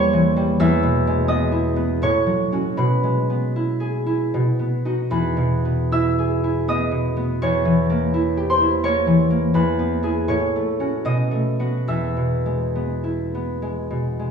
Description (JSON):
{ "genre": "classical, solo harp piece", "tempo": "67-88 BPM", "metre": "3/4", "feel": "rubato", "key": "E major", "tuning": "A4 = 441 Hz", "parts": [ { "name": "concert harp", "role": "solo", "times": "0.0-14.3 s", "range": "E2 to E6", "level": "-18 LUFS", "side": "equal", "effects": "none" } ], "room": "wet recital hall reverb, RT60 1.4 s", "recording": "heard from further back in the room, studio ambience", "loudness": "-18 LUFS", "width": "side -6 dB against mid", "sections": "0.0-14.3 A section", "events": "none", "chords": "0.0 Edim7; 0.6 E; 2.0 F#m/A; 2.8 E/B; 4.3 B; 5.1 E; 7.4 Edim7; 9.5 E; 10.3 F#m/A; 11.0 B7; 11.9 E" }